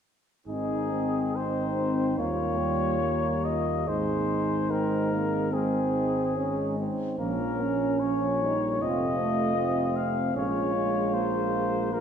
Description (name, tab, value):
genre	classical, hymn-like piece for brass band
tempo	66-79 BPM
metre	4/4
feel	rubato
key	Ab major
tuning	A4 = 440 Hz
part	mellow cornet	melody	0.5-12.0 s	Ab4 to F5	-30 LUFS	left 6 dB	none
part	mellow French horn section	second line	0.5-12.0 s	Db4 to F4	-31 LUFS	right 6 dB	none
part	clear trombone	accompaniment	0.5-12.0 s	G3 to Db4	-32 LUFS	right 3 dB	none
part	clear trombone section	accompaniment	0.5-12.0 s	F3 to C4	-34 LUFS	left 3 dB	none
part	mellow tuba	bass	0.5-12.0 s	F1 to Eb2	-32 LUFS	equal	none
room	wet recital hall reverb, RT60 1.8 s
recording	recorded in a church or concert hall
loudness	-25 LUFS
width	side -8 dB against mid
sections	0.5-12.0 A section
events	none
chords	0.5 Ab; 2.2 Eb9; 3.9 Ab; 7.2 Bbm; 8.8 F7; 10.4 Bbm7